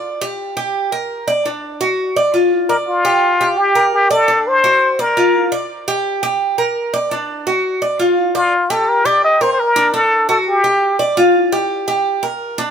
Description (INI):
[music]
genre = latin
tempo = 170 BPM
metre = 4/4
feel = straight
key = G minor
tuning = A4 = 444 Hz
[part]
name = Cuban tres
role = arpeggios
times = 0.0-12.7 s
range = D4 to D5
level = -16 LUFS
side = right 1 dB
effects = none
[part]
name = trumpet with plunger mute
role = melody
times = 2.7-5.5, 8.4-11.0 s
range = F4 to Eb5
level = -13 LUFS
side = left 1 dB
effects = none
[sound]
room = light reverb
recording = none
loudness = -13 LUFS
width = side -8 dB against mid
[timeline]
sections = 0.0-8.5 A section; 8.5-12.7 B section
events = none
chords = 0.0 G5; 0.7 Gm; 1.5 D; 2.2 G5; 3.6 Gmadd9; 4.3 D7; 5.0 Gm7; 6.4 Gm; 7.1 D; 7.8 Dm/F; 8.5 N.C.; 9.2 Cm9; 9.9 D; 10.6 G5; 12.1 Gm